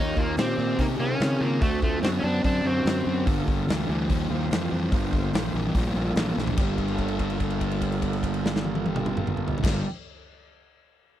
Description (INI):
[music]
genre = blues rock power trio and southern rock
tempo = 145 BPM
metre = 4/4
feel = straight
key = G minor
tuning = A4 = 439 Hz
[part]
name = overdriven slide guitar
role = melody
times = 0.0-3.2 s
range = A3 to Eb4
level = -28 LUFS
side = equal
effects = none
[part]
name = lightly driven lead guitar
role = second line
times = 0.0-3.2 s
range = Eb4 to Db5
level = -35 LUFS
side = right 4 dB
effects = none
[part]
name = tonewheel organ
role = sustained chords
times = 0.0-9.8 s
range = Bb3 to A5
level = -36 LUFS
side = right 3 dB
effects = slow rotary speaker, overdrive
[part]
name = fuzz guitar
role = riff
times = 0.0-9.8 s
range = G2 to Db4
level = -28 LUFS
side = equal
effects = distortion
[part]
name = fuzz fingered electric bass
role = bass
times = 0.0-9.8 s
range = G1 to Db3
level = -28 LUFS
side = equal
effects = overdrive
[part]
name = big rock drum kit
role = drums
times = 0.2-9.7 s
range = crash cymbal, hi-hat, kick drum, snare drum, toms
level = -28 LUFS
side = equal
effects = none
[sound]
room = little or no reverb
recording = dry, close 1970s-style studio recording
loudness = -23 LUFS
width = side -12 dB against mid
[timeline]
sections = 0.0-6.6 A section; 6.6-9.9 B section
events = drum fill 6.4; held note 6.6-9.6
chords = 0.0 Eb7; 1.6 D7; 3.3 Gm7